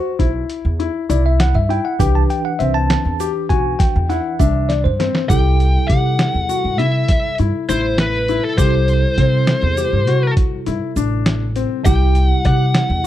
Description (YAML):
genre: progressive instrumental, band music in an uneven meter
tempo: 201 BPM (eighths)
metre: 11/8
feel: straight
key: C lydian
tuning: A4 = 440 Hz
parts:
  - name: bell-like tine electric piano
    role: accompaniment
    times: 0.0-13.1 s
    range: C3 to A5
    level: -23 LUFS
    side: right 2 dB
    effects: medium stereo tremolo
  - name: warm grand piano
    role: arpeggios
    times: 0.0-13.1 s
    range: C4 to G4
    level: -23 LUFS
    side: left 11 dB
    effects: none
  - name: upright bass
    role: bass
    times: 0.2-13.1 s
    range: A1 to C3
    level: -17 LUFS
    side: right 1 dB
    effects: none
  - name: trip hop sampler-style drum kit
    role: drums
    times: 0.2-13.1 s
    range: hi-hat, kick drum, snare drum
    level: -18 LUFS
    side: right 1 dB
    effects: none
  - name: tube shaker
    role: percussion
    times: 1.1-13.1 s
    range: none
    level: -36 LUFS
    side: right 20 dB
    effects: none
  - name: high-gain lead guitar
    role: melody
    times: 5.3-13.1 s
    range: A4 to G5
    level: -20 LUFS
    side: left 1 dB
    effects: distortion
room: studio ambience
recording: dry, close 1970s-style studio recording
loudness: -14 LUFS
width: side -12 dB against mid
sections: 0.0-5.3 A section; 5.3-13.1 B section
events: tine electric piano solo 0.0-5.3; drum fill 4.7-5.3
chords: 0.0 Cmaj7; 5.3 C6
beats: 0.20 0.50 0.80 1.10 1.40 1.70 | 2.00 2.30 2.60 2.90 3.20 3.50 3.80 4.10 4.40 4.70 5.00 | 5.30 5.60 5.90 6.20 6.49 6.79 7.09 7.39 7.69 7.99 8.29 | 8.58 8.88 9.18 9.48 9.78 10.07 10.37 10.67 10.97 11.26 11.56 | 11.86 12.16 12.45 12.75 13.05